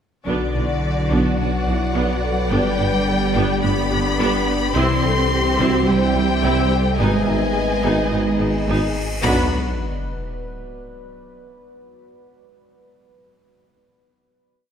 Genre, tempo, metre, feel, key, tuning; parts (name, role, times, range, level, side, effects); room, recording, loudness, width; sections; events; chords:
cinematic, hybrid orchestral and electronic film score; 107 BPM; 4/4; straight; B phrygian; A4 = 439 Hz
rich symphonic violin section; melody; 0.3-9.6 s; D5 to C6; -25 LUFS; left 5 dB
warm symphonic violin section; second line; 0.3-9.6 s; F#4 to D#5; -28 LUFS; left 1 dB
rich symphonic viola section; accompaniment; 0.3-9.6 s; B3 to E4; -26 LUFS; right 2 dB
dark French horn section; sustained chords; 0.3-9.5 s; D4 to B4; -28 LUFS; left 5 dB
deep dark ambient pad; sustained chords; 1.6-9.6 s; F#3 to E5; -28 LUFS; equal; chorus, built-in reverb
mellow trombone section; sustained chords; 0.3-9.5 s; B2 to C4; -29 LUFS; right 4 dB
harp-like synth pluck; arpeggios; 0.3-8.8 s; C3 to B4; -28 LUFS; left 1 dB; chorus, phaser
mellow tuba; bass; 0.3-9.5 s; G1 to C2; -28 LUFS; right 2 dB
rich symphonic double bass section; bass; 0.3-9.6 s; G1 to C2; -27 LUFS; right 2 dB
warm sub bass; bass; 0.3-9.6 s; G1 to C2; -26 LUFS; left 1 dB
warm symphonic cello section; bass; 0.3-9.6 s; D3 to C4; -25 LUFS; right 2 dB
cymbal swell and sub drop; sound effects; 8.4-11.5 s; -29 LUFS; left 1 dB
moderate scoring stage reverb, RT60 1.8 s; -17 LUFS; side -8 dB against mid
0.3-9.2 theme; 9.2-11.5 final chord
cymbal swell 8.4-9.2; impact 9.2-11.5
0.3 Bm; 2.5 G; 4.8 C; 7.0 G#m; 9.2 Bm